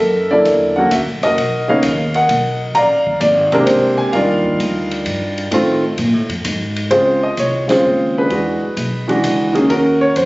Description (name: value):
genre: jazz piano trio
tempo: 130 BPM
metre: 3/4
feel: swing 68% on 8ths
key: unclear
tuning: A4 = 440 Hz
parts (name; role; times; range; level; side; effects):
- warm concert grand piano; melody; 0.0-10.3 s; C3 to Bb5; -13 LUFS; equal; plate reverb
- upright bass; bass; 0.0-10.3 s; Gb1 to Bb2; -22 LUFS; equal; none
- open jazz drum kit; drums; 0.5-10.3 s; hi-hat, kick drum, ride cymbal, snare drum; -26 LUFS; left 1 dB; none
room: moderate club reverb, RT60 0.5 s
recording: recorded on a phone in the room, studio reverb, nothing above 7.7 kHz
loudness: -13 LUFS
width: side -21 dB against mid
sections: 0.0-6.9 A section; 6.9-10.3 B section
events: band accent 7.6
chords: 0.0 Gb7alt; 1.4 Bmaj9; 2.8 Bb9; 4.1 Ebmaj9; 5.5 F7; 6.5 N.C.; 6.9 Dbmaj7; 8.3 E9; 9.7 Ebm7